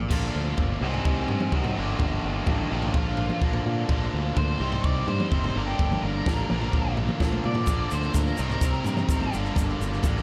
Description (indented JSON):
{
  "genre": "indie rock",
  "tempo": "127 BPM",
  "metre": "4/4",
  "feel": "straight",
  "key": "Bb major",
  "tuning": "A4 = 440 Hz",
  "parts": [
    { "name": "crunchy overdriven guitar", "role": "riff", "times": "0.0-10.2 s", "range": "G2 to Eb4", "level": "-33 LUFS", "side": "equal", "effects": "tape echo" },
    { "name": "fingered electric bass", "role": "bass", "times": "0.0-10.2 s", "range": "Gb1 to Bb2", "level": "-31 LUFS", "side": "equal", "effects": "none" },
    { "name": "raw garage guitar", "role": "riff", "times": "0.1-10.2 s", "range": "G2 to G4", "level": "-36 LUFS", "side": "equal", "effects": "overdrive, lush chorus, tape echo" },
    { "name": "compact cocktail drum kit", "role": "drums", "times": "0.1-10.2 s", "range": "crash cymbal, kick drum, snare drum, toms", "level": "-30 LUFS", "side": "equal", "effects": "none" },
    { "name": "octave-fuzz lead guitar", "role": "melody", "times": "0.8-9.3 s", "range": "Bb3 to D5", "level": "-36 LUFS", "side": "equal", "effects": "distortion, tape echo" },
    { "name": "tube shaker", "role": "percussion", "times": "7.7-10.2 s", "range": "none", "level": "-46 LUFS", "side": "equal", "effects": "tape echo" }
  ],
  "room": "light reverb",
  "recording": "echo-heavy mix",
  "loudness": "-26 LUFS",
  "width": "mono",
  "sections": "0.1-10.2 A section",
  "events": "lead electric guitar solo 0.1-10.2; drum fill 7.2-7.7",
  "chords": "0.1 Bb; 0.8 Cm; 1.8 Gm; 2.7 Bb; 4.6 Cm; 5.6 Gm; 6.5 Bb; 8.4 Cm7; 9.3 Gm",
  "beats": "| 0.11 0.59 1.06 1.53 | 2.01 2.48 2.95 3.43 | 3.90 4.37 4.84 5.32 | 5.79 6.26 6.73 7.21 | 7.68 8.15 8.63 9.10 | 9.57 10.05"
}